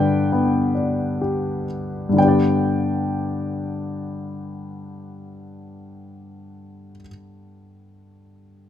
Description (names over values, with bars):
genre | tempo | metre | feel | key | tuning
classical, lyrical solo piano | 61-76 BPM | 3/4 | rubato | G major | A4 = 440 Hz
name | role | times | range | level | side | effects
clear grand piano | solo | 0.0-8.7 s | G2 to G5 | -20 LUFS | left 2 dB | none
room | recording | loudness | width
light reverb | close, detailed microphones | -19 LUFS | side -10 dB against mid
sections
0.0-2.2 A section; 2.2-7.9 B section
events
slowing down 0.0-2.2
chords
0.0 G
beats
0.34 1.21 | 2.18 3.14 4.08 | 5.01 5.95 6.91